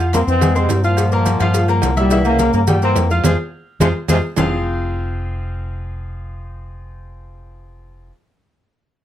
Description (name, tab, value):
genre	latin, salsa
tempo	212 BPM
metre	4/4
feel	straight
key	F harmonic minor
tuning	A4 = 435 Hz
part	clear concert grand piano	accompaniment	0.0-8.1 s	E3 to F6	-22 LUFS	left 2 dB	none
part	hollow-body short-scale fingered electric bass	bass	0.0-8.1 s	F1 to G2	-20 LUFS	equal	none
part	congas	percussion	0.0-4.4 s	none	-22 LUFS	equal	none
part	maracas	percussion	0.0-4.4 s	none	-30 LUFS	right 7 dB	none
part	warm trombone section	melody	0.1-4.2 s	Ab2 to C4	-19 LUFS	equal	none
part	cowbell and bongos	percussion	0.1-4.4 s	none	-27 LUFS	left 5 dB	none
part	timbales and agogo bells	percussion	0.1-4.4 s	none	-26 LUFS	right 6 dB	none
room	moderate studio ambience, RT60 0.5 s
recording	dark, warm production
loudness	-14 LUFS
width	side -11 dB against mid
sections	0.0-4.4 A section; 4.4-6.6 B section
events	band accent 3.2-4.4; drum fill 3.5-4.4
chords	0.0 Fm; 1.0 C7sus4; 3.2 Fm